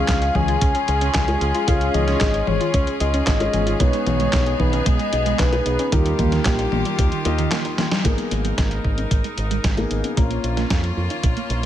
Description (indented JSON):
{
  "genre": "italo disco",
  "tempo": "113 BPM",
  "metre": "4/4",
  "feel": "straight",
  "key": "G# dorian",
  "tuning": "A4 = 439 Hz",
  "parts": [
    { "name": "soft octave-layered synth lead", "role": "melody", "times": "0.0-7.2 s", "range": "G4 to G#5", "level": "-24 LUFS", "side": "left 2 dB", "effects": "chorus, digital delay" },
    { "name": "rich chamber string section", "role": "sustained chords", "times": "0.0-11.7 s", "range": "D#3 to A#4", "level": "-28 LUFS", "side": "left 1 dB", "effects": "none" },
    { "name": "dark grand piano", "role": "stabs", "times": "0.0-11.7 s", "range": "G#3 to D#5", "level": "-28 LUFS", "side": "left 3 dB", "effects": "none" },
    { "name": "soft round pluck", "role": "arpeggios", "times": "0.1-11.7 s", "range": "D#3 to C#5", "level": "-28 LUFS", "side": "right 3 dB", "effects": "chorus, digital delay" },
    { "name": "fingered electric bass with an envelope filter", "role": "bass", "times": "0.1-11.7 s", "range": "G#1 to E#2", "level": "-23 LUFS", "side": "equal", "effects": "tube saturation" },
    { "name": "clean 12-bit digital drum machine", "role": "drums", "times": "0.1-11.7 s", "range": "handclaps, hi-hat, snare drum, toms", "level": "-26 LUFS", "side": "left 2 dB", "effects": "none" },
    { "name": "electronic kick drum", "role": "drums", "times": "0.1-11.3 s", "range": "none", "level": "-20 LUFS", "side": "equal", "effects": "none" }
  ],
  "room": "light reverb",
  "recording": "none",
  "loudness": "-18 LUFS",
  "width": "side -11 dB against mid",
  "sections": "0.0-8.0 A section; 8.0-11.7 B section",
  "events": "drum fill 7.8; band accent 7.9",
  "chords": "0.0 C#; 3.8 G#m/B; 5.9 D#add9; 8.0 G#madd9; 10.2 A#m",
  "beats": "0.08 0.61 1.15 | 1.68 2.21 2.74 3.27 | 3.80 4.33 4.86 5.39 | 5.92 6.46 6.99 7.52 | 8.05 8.58 9.11 9.64 | 10.17 10.70 11.23"
}